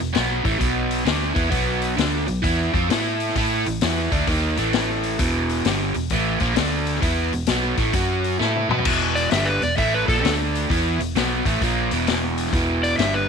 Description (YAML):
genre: blues rock power trio and southern rock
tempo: 131 BPM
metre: 4/4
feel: swing 66% on 8ths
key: unclear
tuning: A4 = 440 Hz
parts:
  - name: crunchy overdriven guitar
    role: riff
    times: 0.0-13.3 s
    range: E2 to B4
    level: -22 LUFS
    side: right 1 dB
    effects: none
  - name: vintage muted fingered electric bass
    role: bass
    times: 0.0-13.3 s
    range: E1 to B2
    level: -26 LUFS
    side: right 1 dB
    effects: none
  - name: vintage drum kit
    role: drums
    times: 0.1-13.1 s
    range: crash cymbal, hi-hat, kick drum, snare drum, toms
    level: -25 LUFS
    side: left 4 dB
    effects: none
  - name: overdriven slide guitar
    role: melody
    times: 9.2-13.3 s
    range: A4 to E5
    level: -22 LUFS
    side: equal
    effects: none
room: small room ambience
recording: 1960s-style stereo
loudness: -19 LUFS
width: side -6 dB against mid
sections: 0.0-8.9 A section; 8.9-13.3 B section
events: drum fill 8.4-8.9; electric slide guitar solo 8.9-13.3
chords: 0.0 E5; 0.6 B5; 1.1 E5; 1.5 B5; 2.9 A5; 5.2 E5; 6.6 D5; 7.0 E5; 7.9 F#5; 8.4 B5; 8.9 E5; 10.2 D5; 10.7 E5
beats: 0.15 0.61 1.07 | 1.52 1.98 2.44 2.90 | 3.36 3.82 4.28 4.73 | 5.19 5.65 6.11 6.57 | 7.03 7.49 7.95 8.40 | 8.86 9.32 9.78 10.24 | 10.70 11.16 11.62 12.08 | 12.54 12.99